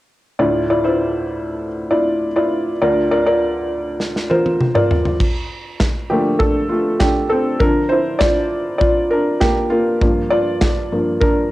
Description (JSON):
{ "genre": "piano-driven pop", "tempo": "100 BPM", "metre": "4/4", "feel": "straight", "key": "D minor", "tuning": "A4 = 440 Hz", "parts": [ { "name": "felt-muted upright piano", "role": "accompaniment", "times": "0.4-11.5 s", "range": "D2 to D5", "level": "-16 LUFS", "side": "equal", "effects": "cassette tape, plate reverb" }, { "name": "modern studio drum kit", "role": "drums", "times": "4.0-11.4 s", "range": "crash cymbal, handclaps, kick drum, snare drum, toms", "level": "-18 LUFS", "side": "equal", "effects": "none" } ], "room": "moderate small room reverb, RT60 0.6 s", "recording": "home recording on cassette", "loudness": "-15 LUFS", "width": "side -16 dB against mid", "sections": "0.4-5.2 A section; 5.2-11.5 B section", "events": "drum fill 4.0-5.2; felt piano solo 5.2-11.5", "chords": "0.4 Dmadd9; 2.8 Bb/D; 5.2 Dm; 7.6 Bb/D; 10.0 Gm7" }